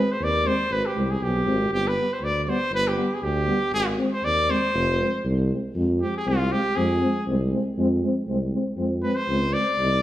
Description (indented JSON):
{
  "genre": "balkan folk, Balkan brass band",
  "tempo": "119 BPM",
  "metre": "2/4",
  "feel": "swing 56% on 16ths",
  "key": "F dorian sharp4",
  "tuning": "A4 = 440 Hz",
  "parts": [
    { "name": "clear trumpet", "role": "melody", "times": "0.0-10.0 s", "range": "F4 to D5", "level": "-24 LUFS", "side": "equal", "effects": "none" },
    { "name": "mellow French horn", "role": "accompaniment", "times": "0.0-9.9 s", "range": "B3 to Eb4", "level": "-29 LUFS", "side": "left 3 dB", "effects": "none" },
    { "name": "mellow euphonium", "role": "accompaniment", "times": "0.0-9.9 s", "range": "G3 to Ab3", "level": "-30 LUFS", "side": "right 3 dB", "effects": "none" },
    { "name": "mellow tuba", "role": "bass", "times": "0.2-10.0 s", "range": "F1 to F2", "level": "-25 LUFS", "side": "equal", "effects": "none" }
  ],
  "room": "wet stone room reverb, RT60 1.2 s",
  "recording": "band playing live in one room",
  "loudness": "-21 LUFS",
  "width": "side -13 dB against mid",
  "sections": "0.0-5.7 A section; 5.7-10.0 B section",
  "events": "trumpet solo 5.7-10.0",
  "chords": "0.0 Ab; 1.7 G; 3.7 Ab; 4.7 Fm"
}